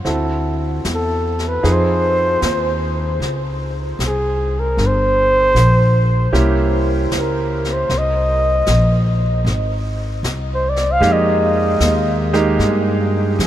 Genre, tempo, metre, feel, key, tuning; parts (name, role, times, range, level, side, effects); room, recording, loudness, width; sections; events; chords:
jazz ballad; 76 BPM; 4/4; swing 67% on 8ths; F minor; A4 = 440 Hz
clear baby grand piano; accompaniment; 0.0-13.5 s; Ab3 to A4; -21 LUFS; right 3 dB
upright bass; bass; 0.0-13.5 s; G1 to G2; -18 LUFS; equal
vintage brush drum kit; drums; 0.1-13.5 s; brushed snare drum, hi-hat, snare drum; -29 LUFS; left 1 dB
trumpet with bucket mute; melody; 0.9-13.5 s; Ab4 to F5; -18 LUFS; equal
moderate huge ambient reverb, RT60 8.9 s; in a vast, echoing space; -14 LUFS; side -12 dB against mid
0.0-13.5 A section
muted trumpet solo 0.0-13.5
0.1 D9; 1.6 Dbmaj9; 4.8 Gmadd11; 6.3 C7b9; 7.9 Fm11